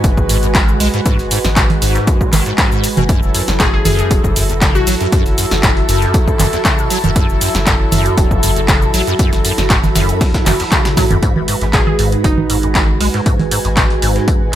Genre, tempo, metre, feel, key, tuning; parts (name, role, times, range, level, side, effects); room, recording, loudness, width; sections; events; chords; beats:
acid house; 118 BPM; 4/4; straight; G# phrygian; A4 = 440 Hz
warm analog pad; sustained chords; 0.0-14.6 s; F#3 to B4; -22 LUFS; right 1 dB; chorus, sidechain pumping
acid bass, square; riff; 0.0-14.6 s; E2 to G#3; -19 LUFS; equal; ensemble chorus, sidechain pumping, ping-pong delay
warm sub bass; bass; 0.0-14.6 s; E1 to B1; -19 LUFS; equal; sidechain pumping
breakbeat sampler-style drum kit; drums; 0.0-14.6 s; hi-hat, snare drum, tambourine; -27 LUFS; equal
electronic kick drum; drums; 0.0-14.4 s; -15 LUFS; equal
punchy analog drum machine; drums; 0.0-14.6 s; congas, handclaps, hi-hat, shaker, snare drum, toms; -17 LUFS; right 1 dB
granular cloud pad; texture; 0.0-14.6 s; F#4 to B5; -22 LUFS; right 2 dB; built-in reverb, sidechain pumping
glassy wavetable pluck; melody; 3.6-5.5, 11.7-13.0 s; D#4 to G#4; -21 LUFS; left 1 dB; chorus, cassette tape, tape echo
light reverb; -11 LUFS; side -12 dB against mid
0.0-11.2 A section; 11.2-14.6 B section
drop 0.0-11.2; drum fill 10.7-11.2
0.0 G#m7; 3.1 F#m7; 11.2 G#m7
0.04 0.55 | 1.06 1.56 2.07 2.58 | 3.09 3.60 4.11 4.62 | 5.12 5.63 6.14 6.65 | 7.16 7.67 8.18 8.68 | 9.19 9.70 10.21 10.72 | 11.23 11.73 12.24 12.75 | 13.26 13.77 14.28